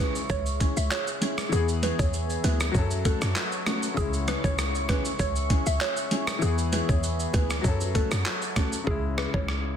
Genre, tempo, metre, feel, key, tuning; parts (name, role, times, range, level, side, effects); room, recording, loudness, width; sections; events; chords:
dancehall; 98 BPM; 4/4; straight; C# minor; A4 = 440 Hz
mallet-like synth pluck; melody; 0.0-9.5 s; G#4 to E5; -34 LUFS; equal; chorus, phaser, tape echo
clear grand piano; accompaniment; 0.0-9.8 s; C#3 to A4; -34 LUFS; left 6 dB
deep dark ambient pad; sustained chords; 0.0-8.9 s; G#4 to C#6; -35 LUFS; right 1 dB; chorus, built-in reverb, sidechain pumping
mellow electric guitar; arpeggios; 0.0-8.8 s; G#3 to A4; -32 LUFS; equal
short 808-style bass; bass; 0.0-9.8 s; B1 to F#2; -28 LUFS; equal
dusty soul sampler-style drum kit; drums; 0.2-9.6 s; handclaps, hi-hat, kick drum, rim click, shaker; -28 LUFS; equal
bongos; percussion; 0.9-8.7 s; -42 LUFS; right 3 dB
light reverb; dense, heavily limited modern master; -24 LUFS; side -8 dB against mid
0.0-8.9 A section
0.0 C#m; 1.5 E; 2.7 F#m; 4.0 C#m; 6.4 E; 7.6 F#m; 8.9 C#m